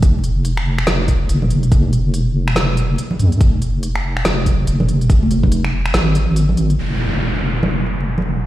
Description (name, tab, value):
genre	deep dubstep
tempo	142 BPM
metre	4/4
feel	swing 60% on 16ths, half-time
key	F minor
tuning	A4 = 440 Hz
part	deep soft wobble bass	bass	0.0-8.5 s	F1 to F2	-17 LUFS	equal	chorus
part	deep house drum kit	drums	0.0-6.8 s	finger snaps, hi-hat, snare drum	-23 LUFS	equal	none
part	electronic kick drum	drums	0.0-5.5 s	none	-14 LUFS	equal	none
part	congas	percussion	0.9-8.2 s	none	-23 LUFS	right 1 dB	dub echo
part	downlifter	sound effects	6.8-8.5 s	none	-21 LUFS	equal	none
room	light reverb, digital ambience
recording	played on a big sound system in a bare room, large studio reverb, vinyl crackle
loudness	-14 LUFS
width	side -14 dB against mid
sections	0.0-6.8 A section; 6.8-8.5 B section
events	none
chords	none